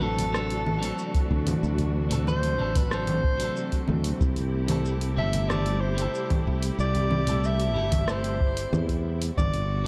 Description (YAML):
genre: sunset chillout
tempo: 93 BPM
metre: 4/4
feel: straight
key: unclear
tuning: A4 = 440 Hz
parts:
  - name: mellow soprano saxophone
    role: melody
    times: 0.0-9.9 s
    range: A4 to E5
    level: -34 LUFS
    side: equal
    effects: digital delay, shimmer reverb
  - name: clean electric guitar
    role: accompaniment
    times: 0.0-9.9 s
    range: F#3 to A4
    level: -37 LUFS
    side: equal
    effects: tape echo, shimmer reverb
  - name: muted studio string section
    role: sustained chords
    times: 0.0-9.9 s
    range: B2 to G4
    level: -36 LUFS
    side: equal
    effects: shimmer reverb
  - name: sustaining fretless electric bass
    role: bass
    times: 0.0-9.9 s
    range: G1 to E2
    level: -30 LUFS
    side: equal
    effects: none
  - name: congas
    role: percussion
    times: 0.0-9.7 s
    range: none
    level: -37 LUFS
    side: equal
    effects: none
  - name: deep house drum kit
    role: drums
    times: 0.2-9.7 s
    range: congas, hi-hat, rim click, shaker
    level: -33 LUFS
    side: equal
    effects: none
  - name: electronic kick drum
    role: drums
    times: 1.1-9.5 s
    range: none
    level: -28 LUFS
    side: equal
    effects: none
room: moderate concert hall reverb, RT60 2.1 s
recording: dark, warm production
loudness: -26 LUFS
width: mono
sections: 0.0-9.4 A section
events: none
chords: 0.0 D9; 4.2 C6; 9.4 Gmaj7